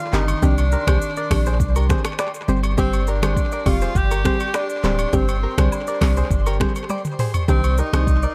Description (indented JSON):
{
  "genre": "afrobeats",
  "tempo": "102 BPM",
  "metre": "4/4",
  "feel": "straight",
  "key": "C minor",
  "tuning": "A4 = 440 Hz",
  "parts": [
    { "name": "warm tenor saxophone", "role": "melody", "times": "0.0-8.3 s", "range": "C4 to G4", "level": "-28 LUFS", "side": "equal", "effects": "tape echo" },
    { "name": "airy breathy pad", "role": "sustained chords", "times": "0.0-8.3 s", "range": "Eb3 to C6", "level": "-36 LUFS", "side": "equal", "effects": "chorus, phaser" },
    { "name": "downlifter", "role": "sound effects", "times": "0.0-2.8 s", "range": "none", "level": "barely audible", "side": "none", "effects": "none" },
    { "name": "mallet-like synth pluck", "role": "accompaniment", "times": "0.1-8.2 s", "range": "D3 to G4", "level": "-27 LUFS", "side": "equal", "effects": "chorus, phaser" },
    { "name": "direct-recorded clean electric guitar", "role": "riff", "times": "0.1-8.3 s", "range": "D4 to D5", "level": "-32 LUFS", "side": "equal", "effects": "tape echo" },
    { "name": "punchy sub bass", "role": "bass", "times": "0.1-8.3 s", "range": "D1 to C2", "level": "-22 LUFS", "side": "equal", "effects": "none" },
    { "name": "afro-pop drum kit", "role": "drums", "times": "0.1-8.3 s", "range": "finger snaps, handclaps, hi-hat, kick drum, rim click, shaker, toms", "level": "-25 LUFS", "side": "equal", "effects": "none" },
    { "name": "agogo bells and woodblock", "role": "percussion", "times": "0.3-8.1 s", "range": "none", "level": "-35 LUFS", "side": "equal", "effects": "tape echo" }
  ],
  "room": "digital ambience",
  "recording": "echo-heavy mix",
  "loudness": "-20 LUFS",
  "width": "mono",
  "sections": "0.0-8.3 A section",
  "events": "drum fill 6.9-7.5",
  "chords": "0.0 Cmadd9; 2.5 Gsus4; 7.5 Cmadd9"
}